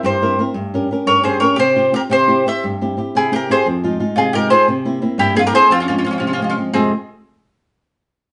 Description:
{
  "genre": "italian folk, Italian serenade",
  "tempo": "117 BPM (dotted quarters)",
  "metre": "6/8",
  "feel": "rubato",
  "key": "F minor",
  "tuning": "A4 = 445 Hz",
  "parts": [
    { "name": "mandolin", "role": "second line", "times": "0.0-6.9 s", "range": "C4 to C5", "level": "-25 LUFS", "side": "equal", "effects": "none" },
    { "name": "flamenco guitar", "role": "accompaniment", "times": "0.0-6.9 s", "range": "F2 to Bb4", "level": "-21 LUFS", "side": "equal", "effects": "none" },
    { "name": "mandolin", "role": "melody", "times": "0.1-6.9 s", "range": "C4 to E5", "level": "-17 LUFS", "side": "equal", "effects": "none" }
  ],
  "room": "wet studio reverb, RT60 0.7 s",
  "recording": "band playing live in one room, nothing above 10.8 kHz",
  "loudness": "-16 LUFS",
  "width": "mono",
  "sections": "0.0-6.7 A section; 6.7-7.8 B section",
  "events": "none",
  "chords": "0.0 C7; 0.6 Gdim; 1.6 Csus4; 2.1 C; 3.7 Fm7; 4.7 C7; 5.7 Fm"
}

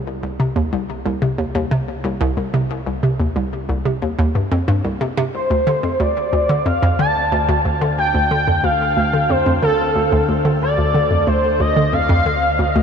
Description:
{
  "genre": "ambient, sequencer-driven space music",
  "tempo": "91 BPM",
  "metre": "4/4",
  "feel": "straight",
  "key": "unclear",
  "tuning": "A4 = 440 Hz",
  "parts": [
    { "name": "analog drone", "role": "bass", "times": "0.0-12.8 s", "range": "C2 to D2", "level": "-26 LUFS", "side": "equal", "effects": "chorus" },
    { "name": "hollow square pluck", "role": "riff", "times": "0.2-12.8 s", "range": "C2 to D3", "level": "-18 LUFS", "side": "equal", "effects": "chorus, cassette tape, ping-pong delay" },
    { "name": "expressive portamento lead", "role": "melody", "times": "5.3-12.8 s", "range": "A4 to A5", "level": "-17 LUFS", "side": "equal", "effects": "analog chorus, shimmer reverb, ping-pong delay" }
  ],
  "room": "wet huge ambient reverb, RT60 7.8 s",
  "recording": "none",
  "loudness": "-15 LUFS",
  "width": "side -7 dB against mid",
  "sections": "0.0-12.8 A section",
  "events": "fade-in on synth drone 0.0-12.8",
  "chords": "0.0 N.C.; 5.3 Dm"
}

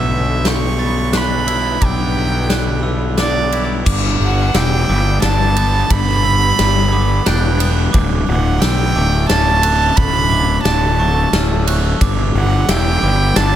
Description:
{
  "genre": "post-rock",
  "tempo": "88 BPM",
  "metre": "3/4",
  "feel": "straight",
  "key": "unclear",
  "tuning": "A4 = 440 Hz",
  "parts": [
    { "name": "warm violin", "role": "melody", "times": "0.0-13.6 s", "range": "D5 to C#6", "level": "-19 LUFS", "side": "right 3 dB", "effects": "slapback echo" },
    { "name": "shimmering ambient pad", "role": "sustained chords", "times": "0.0-13.6 s", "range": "D3 to B4", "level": "-27 LUFS", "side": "equal", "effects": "chorus, built-in reverb" },
    { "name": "glockenspiel with brass mallets", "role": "arpeggios", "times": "0.0-13.6 s", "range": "C#6 to A6", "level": "-27 LUFS", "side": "right 5 dB", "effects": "slapback echo" },
    { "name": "twangy electric guitar", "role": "arpeggios", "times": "0.0-13.6 s", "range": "D2 to E4", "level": "-24 LUFS", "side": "left 4 dB", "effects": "analog chorus, slapback echo" },
    { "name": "fuzz fingered electric bass", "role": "bass", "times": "0.0-13.6 s", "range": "D1 to B1", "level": "-16 LUFS", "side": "equal", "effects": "overdrive" },
    { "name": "big rock drum kit", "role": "drums", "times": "0.5-13.5 s", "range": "crash cymbal, kick drum, ride cymbal, snare drum", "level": "-19 LUFS", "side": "left 1 dB", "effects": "none" }
  ],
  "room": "small room reverb",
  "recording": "none",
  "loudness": "-13 LUFS",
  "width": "side -11 dB against mid",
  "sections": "0.0-3.9 A section; 3.9-13.6 B section",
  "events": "none",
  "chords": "0.0 G6/B; 3.9 G; 7.9 Dmaj7; 12.0 G"
}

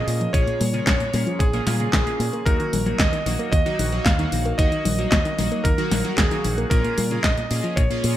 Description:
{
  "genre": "italo disco",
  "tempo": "113 BPM",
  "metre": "4/4",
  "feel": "straight",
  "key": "Eb minor",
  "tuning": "A4 = 440 Hz",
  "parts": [
    { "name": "clear electric grand piano", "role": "melody", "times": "0.0-8.2 s", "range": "Ab4 to F5", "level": "-26 LUFS", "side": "right 1 dB", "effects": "digital delay" },
    { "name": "soft round pluck", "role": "arpeggios", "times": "0.0-8.2 s", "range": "F2 to Bb3", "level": "-29 LUFS", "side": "left 2 dB", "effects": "chorus, cassette tape, digital delay" },
    { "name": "chorused polysynth", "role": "stabs", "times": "0.0-8.1 s", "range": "Gb3 to Ab4", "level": "-28 LUFS", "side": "equal", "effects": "phaser" },
    { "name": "fingered electric bass with an envelope filter", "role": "bass", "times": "0.1-8.2 s", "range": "Bb1 to Bb2", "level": "-26 LUFS", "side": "equal", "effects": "tube saturation" },
    { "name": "house drum kit", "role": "drums", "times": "0.1-8.1 s", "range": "congas, handclaps, hi-hat, snare drum", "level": "-25 LUFS", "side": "left 1 dB", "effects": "studio reverb, gated reverb" },
    { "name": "electronic kick drum", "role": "drums", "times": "0.3-7.9 s", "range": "none", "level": "-22 LUFS", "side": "equal", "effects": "studio reverb" }
  ],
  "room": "light reverb",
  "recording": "bright 1980s-style digital production",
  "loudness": "-19 LUFS",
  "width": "side -12 dB against mid",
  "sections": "0.0-8.2 A section",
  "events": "none",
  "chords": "0.0 Bbm7; 2.5 Ebm; 6.7 Bbm7"
}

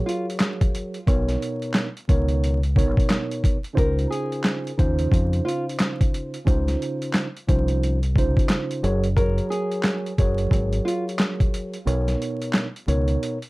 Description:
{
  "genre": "hip hop, boom-bap hip-hop",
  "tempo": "89 BPM",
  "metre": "4/4",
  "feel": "swing 62% on 16ths",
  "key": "Db major",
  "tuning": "A4 = 440 Hz",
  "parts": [
    { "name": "mellow tine electric piano", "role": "accompaniment", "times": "0.0-13.4 s", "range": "Cb3 to Db5", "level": "-26 LUFS", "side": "right 1 dB", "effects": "slow stereo tremolo, high-pass filter, low-pass filter" },
    { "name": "nylon-string guitar", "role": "melody", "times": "0.1-11.0 s", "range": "F4 to Bb4", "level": "-29 LUFS", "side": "equal", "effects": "high-pass filter, low-pass filter, tape echo" },
    { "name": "boom bap sampler-style drum kit", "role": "drums", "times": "0.1-13.5 s", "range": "handclaps, hi-hat, kick drum, snare drum", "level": "-22 LUFS", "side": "equal", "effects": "overdrive" },
    { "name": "deep dub fingered electric bass", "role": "bass", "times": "1.1-13.2 s", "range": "Gb1 to F2", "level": "-22 LUFS", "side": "equal", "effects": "none" }
  ],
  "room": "light reverb",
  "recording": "dark, warm production, vinyl crackle",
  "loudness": "-20 LUFS",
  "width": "side -22 dB against mid",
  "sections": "0.0-13.5 A section",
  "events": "kick muted 11.9-13.5",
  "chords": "0.0 Gbadd9; 1.1 Cbmaj7; 3.8 Dbmaj7; 8.8 Gbadd9; 11.9 Cbmaj7"
}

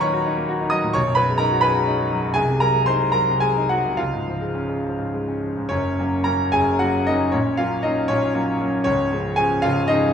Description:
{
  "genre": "classical, romantic character piece for solo piano",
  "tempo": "68-88 BPM (dotted quarters)",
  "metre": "6/8",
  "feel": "rubato",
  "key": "F# major",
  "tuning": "A4 = 440 Hz",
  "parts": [
    { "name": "clear grand piano", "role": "solo", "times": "0.0-10.1 s", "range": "C#1 to D#6", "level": "-18 LUFS", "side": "equal", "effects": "none" }
  ],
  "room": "moderate recital hall reverb, RT60 1.7 s",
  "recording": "minimal, uncompressed stereo recording",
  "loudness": "-18 LUFS",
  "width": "side -7 dB against mid",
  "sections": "0.0-5.7 A section; 5.7-10.1 B section",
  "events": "none",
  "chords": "0.0 D#m7; 1.0 G#m7/B; 2.4 G#7/B#; 4.0 C#; 5.7 F#; 7.3 F#/A#; 8.9 C#"
}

